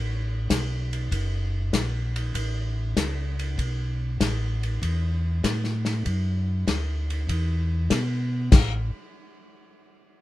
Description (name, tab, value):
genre	soul jazz organ trio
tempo	97 BPM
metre	4/4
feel	swing 69% on 8ths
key	A major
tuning	A4 = 441 Hz
part	mellow tonewheel organ	bass	0.0-8.9 s	F#1 to B2	-26 LUFS	equal	slow rotary speaker
part	warm soul drum kit	drums	0.5-8.7 s	crash cymbal, hi-hat, kick drum, ride cymbal, snare drum	-24 LUFS	left 2 dB	none
room	little or no reverb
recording	minimal, uncompressed stereo recording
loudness	-23 LUFS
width	side -16 dB against mid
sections	0.0-8.5 A section; 8.5-10.2 B section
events	none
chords	none